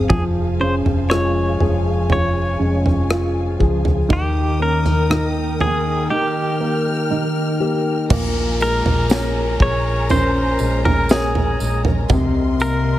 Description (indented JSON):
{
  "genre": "pop ballad",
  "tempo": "60 BPM",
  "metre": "4/4",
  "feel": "straight",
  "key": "unclear",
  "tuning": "A4 = 439 Hz",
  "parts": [
    { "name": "warm grand piano", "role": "accompaniment", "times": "0.0-13.0 s", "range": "C3 to Db5", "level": "-23 LUFS", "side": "right 2 dB", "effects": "none" },
    { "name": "warm symphonic string section", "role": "sustained chords", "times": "0.0-13.0 s", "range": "Ab4 to F6", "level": "-28 LUFS", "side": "left 1 dB", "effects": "none" },
    { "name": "nylon-string guitar", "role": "arpeggios", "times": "0.0-13.0 s", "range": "F2 to Ab4", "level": "-25 LUFS", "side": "left 6 dB", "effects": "tape echo" },
    { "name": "hollow-body short-scale fingered electric bass", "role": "bass", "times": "0.0-13.0 s", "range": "F1 to Eb2", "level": "-21 LUFS", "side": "equal", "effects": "none" },
    { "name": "direct-recorded clean electric guitar", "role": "melody", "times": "0.1-13.0 s", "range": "G4 to Db5", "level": "-23 LUFS", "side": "equal", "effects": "tremolo" },
    { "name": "modern studio drum kit", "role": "drums", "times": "0.1-12.3 s", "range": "crash cymbal, kick drum, rim click, snare drum, toms", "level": "-20 LUFS", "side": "right 1 dB", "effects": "none" },
    { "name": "tambourine", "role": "percussion", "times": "8.1-12.8 s", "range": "none", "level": "-36 LUFS", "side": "right 6 dB", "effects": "none" },
    { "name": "downlifter", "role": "sound effects", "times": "8.2-13.0 s", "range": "none", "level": "-34 LUFS", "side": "equal", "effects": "none" }
  ],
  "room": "light reverb, small room ambience",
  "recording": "none",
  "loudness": "-16 LUFS",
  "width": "side -14 dB against mid",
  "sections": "0.0-8.1 A section; 8.1-13.0 B section",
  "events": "none",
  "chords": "0.1 Db/F; 4.1 Eb; 8.1 Bbm7; 12.1 Cm7"
}